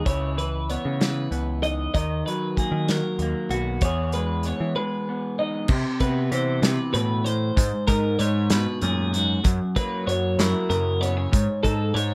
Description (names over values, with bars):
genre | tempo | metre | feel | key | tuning
math rock and midwest emo | 64 BPM (dotted quarters) | 6/8 | straight | unclear | A4 = 438 Hz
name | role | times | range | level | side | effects
electric guitar through a small old amp | accompaniment | 0.0-12.1 s | E2 to A#4 | -30 LUFS | equal | none
twelve-string electric guitar | arpeggios | 0.0-12.1 s | F#4 to D#5 | -30 LUFS | equal | plate reverb
growling picked electric bass | bass | 0.1-12.1 s | B1 to F#3 | -28 LUFS | equal | overdrive
loose indie drum kit | drums | 0.1-12.1 s | crash cymbal, hi-hat, kick drum, snare drum | -27 LUFS | equal | none
room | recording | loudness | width
light reverb | none | -24 LUFS | mono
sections
0.0-5.7 A section; 5.7-12.1 B section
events
none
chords
0.1 C#m9; 1.9 Bmaj7/D#; 3.8 Emaj7; 5.7 Cmaj7; 7.6 G#m9; 9.5 F#7; 11.3 G#5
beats
| 0.06 1.00 | 1.94 2.88 | 3.82 4.76 | 5.70 6.64 | 7.58 8.52 | 9.46 10.40 | 11.34